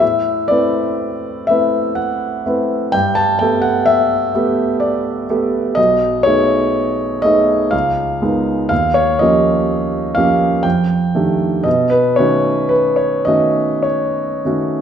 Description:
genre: classical, impressionist solo piano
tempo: 62 BPM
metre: 3/4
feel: uneven beats, rubato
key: unclear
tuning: A4 = 440 Hz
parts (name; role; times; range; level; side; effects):
- clear concert grand piano; solo; 0.0-14.8 s; B1 to A5; -13 LUFS; equal; none
room: moderate scoring stage reverb, RT60 1.6 s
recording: minimal, uncompressed stereo recording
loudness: -13 LUFS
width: side -8 dB against mid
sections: 0.0-14.8 A section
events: none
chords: 0.0 Amadd9; 2.9 Gadd9; 5.8 B13; 7.7 C#13; 8.7 D#9; 10.6 F13; 11.7 B9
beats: | 0.02 1.00 1.98 | 2.93 3.87 4.82 | 5.77 6.75 7.73 | 8.71 9.68 10.64 | 11.65 12.71 13.85

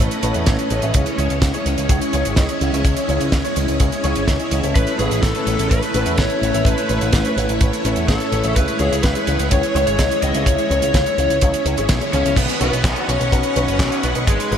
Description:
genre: italo disco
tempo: 126 BPM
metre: 4/4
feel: straight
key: C# minor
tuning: A4 = 440 Hz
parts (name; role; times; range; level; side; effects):
- string machine, full ensemble; sustained chords; 0.0-14.6 s; G#3 to D#6; -23 LUFS; equal; ensemble chorus
- dark baby grand piano; stabs; 0.0-14.6 s; B3 to E5; -24 LUFS; left 1 dB; ensemble chorus, low-pass filter, analog delay
- picked electric bass with an envelope filter; bass; 0.0-14.6 s; F#1 to E2; -22 LUFS; equal; tube saturation, analog delay
- damped 70s drum kit; drums; 0.0-14.6 s; crash cymbal, handclaps, hi-hat, snare drum; -24 LUFS; right 2 dB; none
- kick drum; drums; 0.5-14.4 s; none; -18 LUFS; equal; none
- lead guitar through a small cranked amp; melody; 4.8-14.6 s; G#3 to D#5; -22 LUFS; left 2 dB; overdrive, analog delay
room: moderate huge ambient reverb, RT60 8.2 s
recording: dreamy mix soaked in reverb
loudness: -16 LUFS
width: side -8 dB against mid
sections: 0.0-12.4 A section; 12.4-14.6 B section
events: band accent 11.9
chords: 0.0 Aadd9; 0.9 C#m; 4.8 Aadd9; 8.6 C#m; 12.4 Badd9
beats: 0.47 | 0.94 1.42 1.90 2.37 | 2.85 3.32 3.80 4.28 | 4.75 5.23 5.70 6.18 | 6.66 7.13 7.61 8.09 | 8.56 9.04 9.51 9.99 | 10.47 10.94 11.42 11.89 | 12.37 12.85 13.32 13.80 | 14.28

